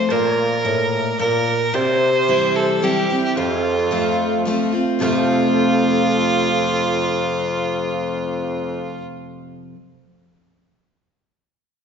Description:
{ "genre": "honky-tonk and classic country", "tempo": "110 BPM", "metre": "3/4", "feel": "straight", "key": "F major", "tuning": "A4 = 438 Hz", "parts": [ { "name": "clear fiddle", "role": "melody", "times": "0.0-9.0 s", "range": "F4 to C5", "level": "-22 LUFS", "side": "right 2 dB", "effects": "none" }, { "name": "picked steel-string acoustic guitar", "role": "accompaniment", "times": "0.0-9.8 s", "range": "F2 to F4", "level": "-21 LUFS", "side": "left 1 dB", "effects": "none" }, { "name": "pedal steel guitar", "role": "sustained chords", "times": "0.0-9.0 s", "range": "G4 to F5", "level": "-27 LUFS", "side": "right 1 dB", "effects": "none" }, { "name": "mellow bassoon", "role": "bass", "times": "0.1-9.0 s", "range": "F2 to C3", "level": "-23 LUFS", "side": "left 1 dB", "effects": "none" } ], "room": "wet scoring stage reverb, RT60 1.8 s", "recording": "recorded in a church or concert hall, nothing above 7.6 kHz", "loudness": "-16 LUFS", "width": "side -6 dB against mid", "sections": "0.0-5.0 A section; 5.0-8.3 B section", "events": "none", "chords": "0.1 Bb; 1.7 C; 3.4 F" }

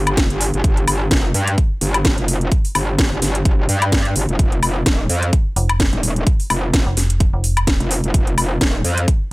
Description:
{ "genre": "bass house", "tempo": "128 BPM", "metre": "4/4", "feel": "swing 56% on 16ths", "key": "unclear", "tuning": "A4 = 440 Hz", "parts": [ { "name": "metallic wobble bass", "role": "bass", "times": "0.0-9.1 s", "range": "Eb1 to G2", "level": "-18 LUFS", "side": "equal", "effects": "distortion, chorus, overdrive, sidechain pumping" }, { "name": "house drum kit", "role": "drums", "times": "0.1-9.2 s", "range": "hi-hat, snare drum, woodblock", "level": "-20 LUFS", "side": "left 1 dB", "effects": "overdrive" }, { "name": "electronic kick drum", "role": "drums", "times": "0.2-9.2 s", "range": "none", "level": "-16 LUFS", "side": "equal", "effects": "none" }, { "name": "metallic FM bass", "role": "bass", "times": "5.6-7.8 s", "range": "F1", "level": "-18 LUFS", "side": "equal", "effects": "sidechain pumping" } ], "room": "little or no reverb", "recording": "none", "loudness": "-15 LUFS", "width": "side -22 dB against mid", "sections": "0.0-9.3 A section", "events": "none", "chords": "0.0 Fsus2; 4.4 N.C." }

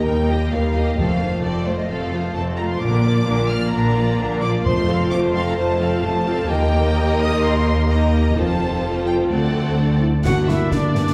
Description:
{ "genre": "cinematic, heroic adventure film score", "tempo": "130 BPM", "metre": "4/4", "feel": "straight", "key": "unclear", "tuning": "A4 = 441 Hz", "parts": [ { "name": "warm symphonic violin section", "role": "melody", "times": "0.0-11.1 s", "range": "C5 to F6", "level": "-30 LUFS", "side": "equal", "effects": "none" }, { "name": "rich symphonic violin section", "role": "second line", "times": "0.0-11.1 s", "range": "D4 to F#5", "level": "-29 LUFS", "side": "equal", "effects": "none" }, { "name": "warm symphonic viola section", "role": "accompaniment", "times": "0.0-11.1 s", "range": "D3 to G4", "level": "-29 LUFS", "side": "equal", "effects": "none" }, { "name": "dark French horn section", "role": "sustained chords", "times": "0.0-11.1 s", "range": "A3 to A4", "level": "-28 LUFS", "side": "equal", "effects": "none" }, { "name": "concert harp", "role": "arpeggios", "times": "0.0-11.1 s", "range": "G2 to D6", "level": "-28 LUFS", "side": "equal", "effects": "none" }, { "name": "rich symphonic cello section", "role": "bass", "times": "0.1-11.0 s", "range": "D2 to Bb2", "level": "-26 LUFS", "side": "equal", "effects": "none" }, { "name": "rich symphonic double bass section", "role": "bass", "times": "0.1-11.0 s", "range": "F1 to Eb2", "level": "-26 LUFS", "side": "equal", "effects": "none" }, { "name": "timpani", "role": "percussion", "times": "1.0-1.6, 4.7-5.3 s", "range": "F2", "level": "-29 LUFS", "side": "equal", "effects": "none" }, { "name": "clear oboe", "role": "second line", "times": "10.3-11.1 s", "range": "D5 to F#5", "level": "-29 LUFS", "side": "equal", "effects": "none" }, { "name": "mellow clarinet", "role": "second line", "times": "10.3-11.1 s", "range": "D4 to F#4", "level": "-26 LUFS", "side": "equal", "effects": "none" }, { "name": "concert snare drum, clash cymbals and concert bass drum", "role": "drums", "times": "10.3-11.1 s", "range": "none", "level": "-26 LUFS", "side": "equal", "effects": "none" } ], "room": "wet recital hall reverb, RT60 1.5 s", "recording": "heard from further back in the room", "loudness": "-19 LUFS", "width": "mono", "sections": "0.0-10.3 A section", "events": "none", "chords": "0.0 Eb; 1.0 F; 2.8 Bb; 4.7 F; 6.5 Eb; 8.4 F; 9.3 D7; 10.3 Gm" }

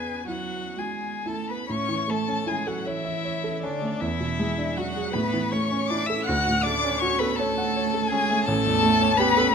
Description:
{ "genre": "classical, slow romantic movement for piano quartet", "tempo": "53 BPM (dotted quarters)", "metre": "6/8", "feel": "uneven beats, rubato", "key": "A major", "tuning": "A4 = 440 Hz", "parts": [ { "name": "rich violin", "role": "melody", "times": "0.0-9.5 s", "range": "D5 to F#6", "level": "-27 LUFS", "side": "left 6 dB", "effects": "none" }, { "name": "dark violin", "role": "second line", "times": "0.0-9.5 s", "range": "D4 to F#5", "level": "-30 LUFS", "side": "left 2 dB", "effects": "none" }, { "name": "warm cello", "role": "second line", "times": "0.0-9.5 s", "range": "D3 to G#4", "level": "-30 LUFS", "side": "right 13 dB", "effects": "none" }, { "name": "dark grand piano", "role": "accompaniment", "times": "0.0-9.5 s", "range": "A1 to F#5", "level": "-27 LUFS", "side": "right 1 dB", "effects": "none" } ], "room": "moderate recital hall reverb, RT60 1.4 s", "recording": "close, detailed microphones", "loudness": "-22 LUFS", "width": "side -6 dB against mid", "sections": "0.0-1.7 A section; 1.7-9.5 B section", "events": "none", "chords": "0.0 E; 1.7 A; 4.0 E9; 5.1 A; 6.3 Dmaj7; 8.5 A7" }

